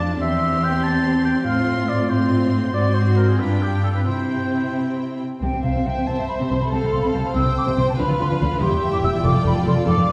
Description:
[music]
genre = quick classical-period movement for symphony orchestra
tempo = 94 BPM (dotted quarters)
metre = 6/8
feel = rubato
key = C major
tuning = A4 = 439 Hz
[part]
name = rich studio violin section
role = melody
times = 0.0-10.1 s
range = E5 to C6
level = -36 LUFS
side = equal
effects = none
[part]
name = warm oboe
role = second line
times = 0.0-4.7 s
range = G4 to A5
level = -28 LUFS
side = equal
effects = none
[part]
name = warm studio violin section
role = second line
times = 0.0-10.1 s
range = C4 to E5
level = -31 LUFS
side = equal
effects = none
[part]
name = rich studio viola section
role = accompaniment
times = 0.0-10.1 s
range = C4 to C5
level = -26 LUFS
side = equal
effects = none
[part]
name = warm studio cello section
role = bass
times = 0.0-10.0 s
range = E2 to D3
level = -25 LUFS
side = equal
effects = none
[part]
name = hollow concert flute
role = second line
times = 5.4-10.1 s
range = F5 to E6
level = -28 LUFS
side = equal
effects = none
[part]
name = rich studio double bass section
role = bass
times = 5.4-9.9 s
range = E1 to D2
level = -25 LUFS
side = equal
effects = none
[sound]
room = wet scoring stage reverb, RT60 1.6 s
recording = heard from further back in the room, vinyl crackle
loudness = -20 LUFS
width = mono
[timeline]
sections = 0.0-5.4 A section; 5.4-10.1 A section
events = none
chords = 0.2 C/E; 1.5 F/A; 2.7 Ab7; 3.4 G5; 4.1 C; 6.7 F/C; 7.3 C5; 8.0 Bdim/D; 8.6 C/E; 9.2 Dm/F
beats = | 0.22 0.84 | 1.47 2.10 | 2.74 3.40 | 4.07 4.75 | 5.42 6.07 | 6.71 7.34 | 7.98 8.62 | 9.24 9.87

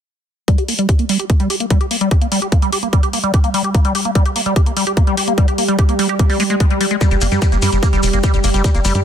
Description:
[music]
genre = psychedelic trance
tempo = 147 BPM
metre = 4/4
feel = straight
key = G minor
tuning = A4 = 440 Hz
[part]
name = evolving wavetable pad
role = sustained chords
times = 1.6-9.0 s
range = G3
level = -23 LUFS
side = right 2 dB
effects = phaser, built-in reverb, sidechain pumping
[part]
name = liquid acid bass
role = riff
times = 0.5-9.0 s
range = G3 to G4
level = -19 LUFS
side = moving between left 6 dB and right 6 dB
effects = phaser, auto-pan, sidechain pumping, ping-pong delay
[part]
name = electronic hi-hat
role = drums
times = 0.5-9.0 s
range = none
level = -23 LUFS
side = left 2 dB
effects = none
[part]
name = electronic kick drum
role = drums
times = 0.5-8.7 s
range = none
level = -14 LUFS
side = equal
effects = none
[part]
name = maracas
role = percussion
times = 7.0-9.0 s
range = none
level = -27 LUFS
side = left 2 dB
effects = none
[part]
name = tight sequencer bass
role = bass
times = 7.1-9.0 s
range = F1 to G2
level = -16 LUFS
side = equal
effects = none
[sound]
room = little or no reverb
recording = dense, heavily limited modern master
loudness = -13 LUFS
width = side -9 dB against mid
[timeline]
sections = 0.5-9.0 A section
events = filter sweep on acid bass 0.5-9.0; filter sweep on ambient pad 0.5-9.0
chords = 0.5 G5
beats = | 0.48 0.89 1.30 1.71 | 2.11 2.52 2.93 3.34 | 3.75 4.15 4.56 4.97 | 5.38 5.79 6.19 6.60 | 7.01 7.42 7.83 8.23 | 8.64

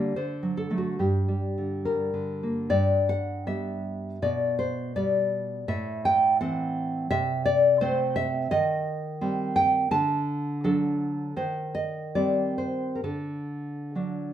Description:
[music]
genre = romantic piece for solo classical guitar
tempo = 64-87 BPM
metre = 2/4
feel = rubato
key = G major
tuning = A4 = 436 Hz
[part]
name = nylon-string guitar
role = solo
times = 0.0-14.3 s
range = G2 to A5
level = -24 LUFS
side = equal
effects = none
[sound]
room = moderate large studio reverb, RT60 0.8 s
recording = band playing live in one room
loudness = -24 LUFS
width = side -10 dB against mid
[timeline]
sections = 0.0-2.7 A section; 2.7-14.3 B section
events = none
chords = 0.2 D7; 1.0 Gm; 2.7 G; 4.2 G/B; 5.7 Am; 7.1 Am/C; 8.5 Cm/Eb; 9.9 D; 11.4 Cm/Eb; 13.0 D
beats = 0.17 | 1.00 1.87 | 2.71 3.48 | 4.22 4.95 | 5.68 6.41 | 7.11 7.81 | 8.51 9.21 | 9.91 10.64 | 11.38 12.16 | 13.04 13.95

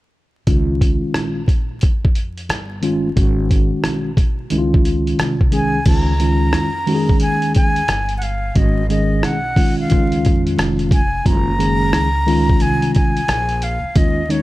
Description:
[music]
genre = hip hop, jazz-hop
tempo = 89 BPM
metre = 4/4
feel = swing 64% on 16ths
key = Db major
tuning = A4 = 440 Hz
[part]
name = mellow tine electric piano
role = accompaniment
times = 0.5-14.4 s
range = Eb3 to Ab4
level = -19 LUFS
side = equal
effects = medium stereo tremolo, low-pass filter
[part]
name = upright bass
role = bass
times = 0.5-14.4 s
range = F1 to F2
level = -22 LUFS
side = equal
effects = none
[part]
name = dusty soul sampler-style drum kit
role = drums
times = 0.5-14.4 s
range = crash cymbal, hi-hat, kick drum, rim click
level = -17 LUFS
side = equal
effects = none
[part]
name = breathy concert flute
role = melody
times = 5.5-14.4 s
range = Db5 to Bb5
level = -22 LUFS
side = equal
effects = none
[sound]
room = little or no reverb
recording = dark, warm production, vinyl crackle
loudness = -14 LUFS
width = side -17 dB against mid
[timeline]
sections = 0.5-5.9 A section; 5.9-14.4 B section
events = filter sweep on tine electric piano 0.5-5.9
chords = 0.5 Db69; 3.2 Abm7; 4.5 Dbadd9; 5.9 Db69; 8.6 Abm7; 9.9 Dbadd9; 11.3 Gbmaj7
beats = | 0.47 1.15 1.82 2.49 | 3.17 3.84 4.52 5.19 | 5.86 6.54 7.21 7.89 | 8.56 9.23 9.91 10.58 | 11.26 11.93 12.61 13.28 | 13.95

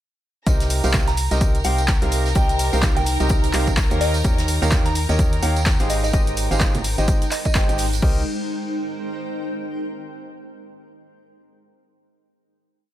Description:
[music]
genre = piano house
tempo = 127 BPM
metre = 4/4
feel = swing 59% on 16ths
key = C minor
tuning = A4 = 439 Hz
[part]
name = warm studio violin section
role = sustained chords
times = 0.5-8.0 s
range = Bb4 to Bb5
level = -31 LUFS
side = right 1 dB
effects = vintage 12-bit sampler grit, sidechain pumping
[part]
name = clear concert grand piano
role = riff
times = 0.5-8.2 s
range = C3 to G5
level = -26 LUFS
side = right 2 dB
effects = sidechain pumping
[part]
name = organ-like FM bass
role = bass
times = 0.5-8.2 s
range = Ab1 to Eb2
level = -22 LUFS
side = equal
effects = tube saturation, sidechain pumping
[part]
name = electronic kick drum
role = drums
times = 0.5-8.1 s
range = none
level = -20 LUFS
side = equal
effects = overdrive
[part]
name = punchy analog drum machine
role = drums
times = 0.5-8.1 s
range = crash cymbal, handclaps, hi-hat, shaker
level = -27 LUFS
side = equal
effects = overdrive
[part]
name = unplugged drum kit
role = drums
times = 0.5-8.0 s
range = hi-hat, snare drum, tambourine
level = -35 LUFS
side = right 1 dB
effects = sidechain pumping on hats, high-pass filter on hats, high-pass filter on snare, sidechain pumping on perc, high-pass filter on perc, high-pass filter on room
[part]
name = tambourine and congas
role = percussion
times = 0.5-8.0 s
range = none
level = -33 LUFS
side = right 4 dB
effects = none
[part]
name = granular cloud pad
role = texture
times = 1.9-9.9 s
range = Ab3 to G5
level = -30 LUFS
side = equal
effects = built-in reverb, sidechain pumping
[part]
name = soft synth bell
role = melody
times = 1.1-7.5 s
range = Eb5 to Bb5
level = -28 LUFS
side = equal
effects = chorus, phaser, ping-pong delay
[sound]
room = small room ambience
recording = none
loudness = -18 LUFS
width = side -13 dB against mid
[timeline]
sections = 0.5-8.0 drop; 8.0-9.9 final chord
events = drop 0.5-8.0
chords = 0.5 Cm7; 4.0 Eb7; 5.9 Abmaj7; 8.0 Cm7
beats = | 0.47 0.94 1.41 1.88 | 2.35 2.83 3.30 3.77 | 4.25 4.72 5.19 5.66 | 6.13 6.61 7.08 7.55 | 8.02 8.50 8.97 9.44

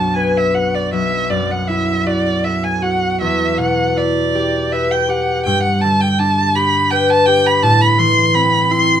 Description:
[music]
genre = classical, impressionist duo for violin and harp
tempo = 54 BPM (dotted quarters)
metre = 6/8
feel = rubato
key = unclear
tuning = A4 = 440 Hz
[part]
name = rich violin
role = melody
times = 0.0-9.0 s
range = D5 to C6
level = -16 LUFS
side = right 1 dB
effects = none
[part]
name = concert harp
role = accompaniment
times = 0.0-9.0 s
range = B1 to B4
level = -16 LUFS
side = left 1 dB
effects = none
[sound]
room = light reverb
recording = none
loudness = -13 LUFS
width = side -9 dB against mid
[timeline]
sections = 0.0-9.0 A section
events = none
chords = 0.0 Bm; 0.9 Dadd9/B; 3.2 Em9; 5.5 Gmaj7; 7.6 Am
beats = | 0.93 2.07 | 3.21 4.34 | 5.46 6.56 | 7.63 8.71

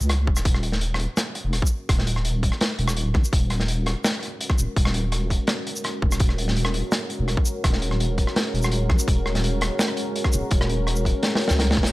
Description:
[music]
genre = half-time drum and bass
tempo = 167 BPM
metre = 4/4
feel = half-time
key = Eb minor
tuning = A4 = 440 Hz
[part]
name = deep soft wobble bass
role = bass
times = 0.0-11.9 s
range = Eb1 to Db2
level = -23 LUFS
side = equal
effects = chorus, tube saturation
[part]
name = crunchy breakbeat drum kit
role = drums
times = 0.0-11.9 s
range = hi-hat, rim click, shaker, snare drum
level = -25 LUFS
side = equal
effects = none
[part]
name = electronic kick drum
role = drums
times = 0.3-11.8 s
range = none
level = -21 LUFS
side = equal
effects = none
[part]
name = dark analog pad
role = sustained chords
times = 1.1-11.9 s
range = Ab3 to Bb4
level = -30 LUFS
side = equal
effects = chorus, sidechain pumping
[sound]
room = studio ambience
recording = none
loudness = -20 LUFS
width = side -19 dB against mid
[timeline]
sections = 0.0-11.9 A section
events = drum fill 11.2-11.9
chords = 0.0 Ebm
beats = 0.10 | 0.45 0.81 1.17 1.53 | 1.89 2.25 2.61 2.97 | 3.33 3.69 4.05 4.41 | 4.77 5.12 5.48 5.84 | 6.20 6.56 6.92 7.28 | 7.64 8.00 8.36 8.72 | 9.08 9.44 9.80 10.15 | 10.51 10.87 11.23 11.59

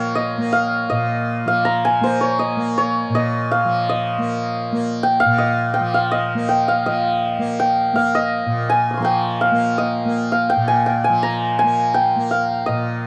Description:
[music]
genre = indian classical, Hindustani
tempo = 163 BPM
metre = 4/4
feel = straight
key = Bb raga bhimpalasi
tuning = A4 = 439 Hz
[part]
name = santur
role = melody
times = 0.0-13.1 s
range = C5 to Eb6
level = -20 LUFS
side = equal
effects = none
[part]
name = tanpura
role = drone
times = 0.0-13.1 s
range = Bb2 to Bb3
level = -25 LUFS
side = equal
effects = none
[sound]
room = little or no reverb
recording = dry, close 1970s-style studio recording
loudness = -19 LUFS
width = mono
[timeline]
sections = 0.0-6.9 A section; 6.9-13.1 B section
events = speeding up 0.0-13.1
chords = none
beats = 0.16 0.54 | 0.91 1.29 1.66 2.04 | 2.41 2.78 3.15 3.53 | 3.90 4.27 4.64 5.01 | 5.38 5.75 6.12 6.48 | 6.85 7.22 7.59 7.95 | 8.32 8.68 9.05 9.41 | 9.78 10.14 10.50 10.87 | 11.23 11.59 11.95 12.31 | 12.67 13.03

